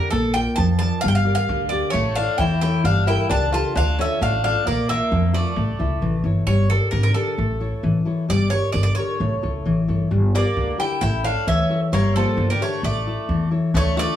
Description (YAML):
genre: greek folk, Greek bouzouki band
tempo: 132 BPM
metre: 2/4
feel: straight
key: unclear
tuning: A4 = 441 Hz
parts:
  - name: Greek bouzouki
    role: melody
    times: 0.0-14.2 s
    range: A4 to A5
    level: -24 LUFS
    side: right 2 dB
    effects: none
  - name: nylon-string guitar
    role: accompaniment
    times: 0.0-14.2 s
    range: D3 to E5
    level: -23 LUFS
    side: left 2 dB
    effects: none
  - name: upright bass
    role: bass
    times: 0.1-14.1 s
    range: G1 to F2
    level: -22 LUFS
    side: equal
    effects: none
  - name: Greek bouzouki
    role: second line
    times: 1.9-6.2, 10.3-14.2 s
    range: F3 to F4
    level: -27 LUFS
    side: left 3 dB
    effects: none
room: light reverb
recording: small room ambience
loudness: -18 LUFS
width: side -10 dB against mid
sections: 0.0-6.5 A section; 6.5-13.7 B section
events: none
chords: 0.1 Bb; 1.0 Gm; 1.9 A; 2.8 Gmadd9; 3.8 Dm; 4.7 Bb; 5.6 A; 6.5 Gm; 7.4 A; 8.3 Gm; 9.2 A; 10.1 Gm; 11.0 A; 11.9 Gm; 12.8 A